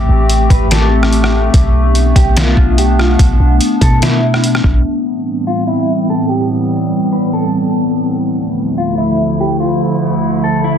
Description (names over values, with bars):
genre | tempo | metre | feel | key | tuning
hip hop, atmospheric cloud-rap | 145 BPM | 4/4 | half-time | A minor | A4 = 440 Hz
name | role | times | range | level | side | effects
warbly tape-like pad | sustained chords | 0.0-10.8 s | D2 to G4 | -14 LUFS | equal | chorus, built-in reverb, sidechain pumping
clean 808-style bass | bass | 0.0-4.8 s | A1 to B2 | -12 LUFS | equal | none
trip hop sampler-style drum kit | drums | 0.3-4.7 s | hi-hat, kick drum, rim click, snare drum | -14 LUFS | equal | none
mellow electric guitar | melody | 0.5-10.8 s | E4 to B4 | -20 LUFS | equal | phaser, ping-pong delay
room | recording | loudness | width
light reverb | dense, heavily limited modern master, low-pass filter | -10 LUFS | side -8 dB against mid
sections
0.0-4.8 A section; 4.8-10.8 B section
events
filter sweep 4.8-10.8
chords
0.0 Am7; 1.5 Bm7; 4.8 Am7; 8.2 Dmadd9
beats
0.30 0.71 1.12 | 1.54 1.95 2.37 2.78 | 3.19 3.61 4.02 4.43 | 4.85 5.26 5.68 6.09 | 6.50 6.92 7.33 7.75 | 8.16 8.57 8.99 9.40 | 9.81 10.23 10.64